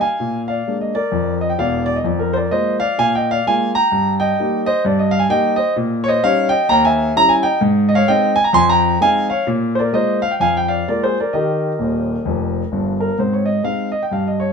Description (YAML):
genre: jazz, stride piano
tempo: 129 BPM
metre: 4/4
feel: swing 59% on 8ths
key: Eb major, Ab major from 5.8 s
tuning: A4 = 437 Hz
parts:
  - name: warm concert grand piano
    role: solo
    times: 0.0-14.5 s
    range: Eb1 to C6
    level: -15 LUFS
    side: equal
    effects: none
room: moderate echo chamber reverb, RT60 1.3 s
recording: minimal, uncompressed stereo recording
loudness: -15 LUFS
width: side -5 dB against mid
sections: 0.0-13.2 A section; 13.2-14.5 B section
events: grand piano fill 11.8-13.2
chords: 0.2 Bb7; 2.0 Bb7/F; 3.9 Eb/G; 5.8 Eb7/Bb; 6.7 Eb7b9; 7.6 Ab; 8.6 Fm7; 9.5 Bb7; 11.3 Eb; 13.2 Ab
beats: | 0.18 0.65 1.11 1.58 | 2.04 2.51 2.98 3.44 | 3.91 4.37 4.84 5.30 | 5.77 6.24 6.70 7.17 | 7.63 8.10 8.56 9.02 | 9.49 9.95 10.42 10.88 | 11.34 11.81 12.27 12.73 | 13.20 13.66 14.13